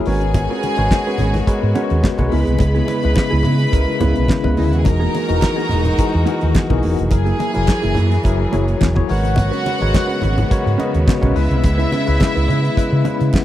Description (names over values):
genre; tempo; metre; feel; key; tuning
disco; 106 BPM; 4/4; straight; C# dorian; A4 = 440 Hz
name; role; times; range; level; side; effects
mellow electric guitar; accompaniment; 0.0-13.4 s; A#3 to C#5; -25 LUFS; right 8 dB; lush chorus
tine electric piano; accompaniment; 0.0-13.4 s; C#3 to F#5; -21 LUFS; left 5 dB; medium stereo tremolo
clear studio string section; sustained chords; 0.0-13.4 s; C#3 to G#4; -27 LUFS; right 2 dB; none
clear studio string section; second line; 0.1-13.4 s; D#4 to B5; -24 LUFS; right 2 dB; none
fingered electric bass; bass; 0.1-13.3 s; E1 to C#3; -18 LUFS; equal; none
damped 70s drum kit; drums; 0.1-13.4 s; handclaps, hi-hat, kick drum, snare drum; -17 LUFS; right 1 dB; none
congas; percussion; 0.3-13.4 s; none; -24 LUFS; left 3 dB; none
group handclap; percussion; 5.4-13.4 s; none; -35 LUFS; right 16 dB; none
room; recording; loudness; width
little or no reverb; dry, close 1970s-style studio recording; -14 LUFS; side -13 dB against mid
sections
0.0-13.4 A section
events
tine electric piano fill 13.0-13.4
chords
0.1 G#m11; 2.3 C#m7; 4.9 Emaj9#11; 7.1 F#9; 9.1 G#m11; 11.4 C#m7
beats
| 0.35 0.92 1.48 2.04 | 2.61 3.17 3.73 4.30 | 4.86 5.43 5.99 6.55 | 7.12 7.68 8.25 8.81 | 9.38 9.94 10.51 11.07 | 11.63 12.20 12.77 13.33